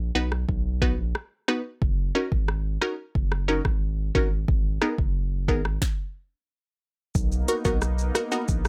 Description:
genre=dancehall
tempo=90 BPM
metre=4/4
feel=straight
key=unclear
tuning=A4 = 440 Hz
part: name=saturated sub bass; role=bass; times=0.0-8.7 s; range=F#1 to B1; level=-29 LUFS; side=equal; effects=none
part: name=wavetable chord stab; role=accompaniment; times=0.1-8.5 s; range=B3 to B4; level=-28 LUFS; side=equal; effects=none
part: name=afro-pop drum kit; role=drums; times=0.3-8.7 s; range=hi-hat, kick drum, rim click, shaker, snare drum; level=-28 LUFS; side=equal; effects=none
part: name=lush unison pad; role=sustained chords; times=7.2-8.7 s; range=A#3 to D#4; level=-37 LUFS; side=equal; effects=chorus, sidechain pumping
part: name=bongos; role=percussion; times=8.1-8.5 s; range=none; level=-43 LUFS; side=equal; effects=none
room=little or no reverb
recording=none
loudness=-26 LUFS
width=mono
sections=0.0-7.2 A section; 7.2-8.7 B section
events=stop 5.8-7.2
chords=0.0 B; 1.8 F#6; 4.5 G#madd9; 7.2 Bmaj7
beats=0.48 1.15 | 1.82 2.48 3.15 3.82 | 4.48 5.15 5.82 6.48 | 7.15 7.82 8.48

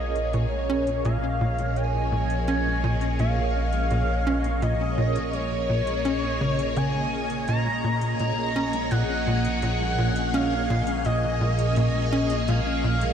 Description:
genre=ambient, sequencer-driven space music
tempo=84 BPM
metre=4/4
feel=straight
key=Bb minor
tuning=A4 = 440 Hz
part: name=pulse-width lead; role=melody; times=0.0-13.1 s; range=Db5 to Bb5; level=-29 LUFS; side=equal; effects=chorus, ping-pong delay
part: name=phased string machine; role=sustained chords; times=0.0-13.1 s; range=Bb2 to Db5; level=-29 LUFS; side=equal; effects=ensemble chorus, phaser
part: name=analog drone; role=bass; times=0.0-13.1 s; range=Bb1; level=-28 LUFS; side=equal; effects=chorus
part: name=pulsing gated texture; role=texture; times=0.0-13.1 s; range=Eb5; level=-37 LUFS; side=right 5 dB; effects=chorus, built-in reverb
part: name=soft vintage rhythm box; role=percussion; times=0.2-13.1 s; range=hi-hat, toms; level=-44 LUFS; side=left 7 dB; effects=none
part: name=tight sequencer bass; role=riff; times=0.3-13.0 s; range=Bb2 to Db4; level=-27 LUFS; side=equal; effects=analog chorus, ping-pong delay
room=moderate lush hall reverb, RT60 2.7 s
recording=none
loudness=-22 LUFS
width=side -8 dB against mid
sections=0.0-13.1 A section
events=none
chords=0.0 Bbm7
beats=0.34 1.05 | 1.76 2.48 3.19 3.91 | 4.62 5.34 6.05 6.76 | 7.48 8.19 8.91 9.62 | 10.34 11.05 11.77 12.48

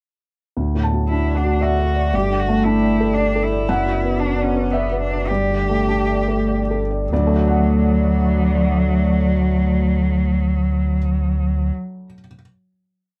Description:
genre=neoclassical piano and strings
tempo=93-118 BPM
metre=3/4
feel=rubato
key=D major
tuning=A4 = 440 Hz
part: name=felt-muted upright piano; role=accompaniment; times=0.6-12.4 s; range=D2 to A5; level=-24 LUFS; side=equal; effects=none
part: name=dark analog pad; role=sustained chords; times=1.1-11.7 s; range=A3 to D5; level=-27 LUFS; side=equal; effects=chorus
part: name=sub bass with octave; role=bass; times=0.6-11.7 s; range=F#1 to D2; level=-23 LUFS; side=equal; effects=none
part: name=rich cello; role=second line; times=1.1-11.7 s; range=F#3 to G4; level=-24 LUFS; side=equal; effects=none
room=wet booth ambience, RT60 0.2 s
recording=heard from further back in the room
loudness=-19 LUFS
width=mono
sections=0.6-7.1 theme; 7.1-11.0 final chord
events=slowing down 2.9-7.1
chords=0.6 D; 2.1 Gsus2; 3.7 Bm/F#; 5.3 Gsus2; 7.1 D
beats=| 0.58 1.10 1.62 | 2.14 2.65 3.16 | 3.68 4.20 4.73 | 5.29 5.87 6.47 | 7.10 7.75 8.39 | 9.04 9.68 10.32

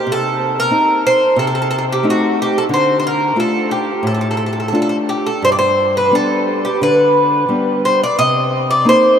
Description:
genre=fado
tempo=89 BPM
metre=4/4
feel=uneven beats, rubato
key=unclear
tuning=A4 = 439 Hz
part: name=Irish bouzouki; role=melody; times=0.0-9.2 s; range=F#4 to Eb5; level=-14 LUFS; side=right 1 dB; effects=none
part: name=nylon-string guitar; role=accompaniment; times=0.1-9.2 s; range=G2 to F4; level=-19 LUFS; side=left 2 dB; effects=none
room=wet huge ambient reverb, RT60 8.4 s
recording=in a vast, echoing space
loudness=-13 LUFS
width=side -8 dB against mid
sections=0.0-9.2 A section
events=none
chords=0.1 Adim/C; 2.7 Dm; 5.4 G; 8.2 Cm7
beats=| 0.07 0.71 1.37 2.04 | 2.70 3.36 4.03 4.73 | 5.43 6.12 6.80 7.49 | 8.17 8.85

